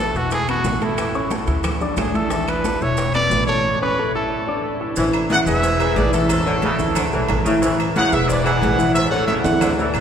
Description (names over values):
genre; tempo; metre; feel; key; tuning
latin, salsa; 181 BPM; 4/4; straight; A major; A4 = 440 Hz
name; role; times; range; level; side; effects
bright trumpet; melody; 0.0-4.8 s; E4 to D5; -24 LUFS; right 1 dB; none
warm upright piano; accompaniment; 0.0-10.0 s; E3 to E6; -22 LUFS; left 1 dB; none
upright bass; bass; 0.0-10.0 s; E1 to D2; -24 LUFS; left 1 dB; none
maracas; percussion; 0.1-10.0 s; none; -36 LUFS; right 5 dB; none
bongos and cowbell; percussion; 0.2-10.0 s; none; -32 LUFS; left 2 dB; none
congas; percussion; 0.2-10.0 s; none; -29 LUFS; equal; none
timbales and agogo bells; percussion; 0.3-10.0 s; none; -29 LUFS; right 3 dB; none
claves; percussion; 0.5-10.0 s; none; -38 LUFS; left 5 dB; none
mellow saxophone section; second line; 5.0-10.0 s; C#3 to E3; -26 LUFS; equal; none
clear trumpet section; melody; 5.3-10.0 s; C#4 to F#5; -21 LUFS; right 1 dB; none
room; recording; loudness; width
wet cathedral reverb, RT60 6.7 s; recorded in a church or concert hall; -17 LUFS; side -8 dB against mid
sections
0.0-5.0 A section; 5.0-10.0 B section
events
break 3.6-5.0; drum fill 9.4-10.0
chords
0.3 E5; 1.0 A; 1.6 Dsus2; 2.3 A5; 3.0 E5; 3.6 A; 4.3 Dsus2; 5.0 E; 6.3 A; 7.0 Dsus2; 7.6 A; 8.9 N.C.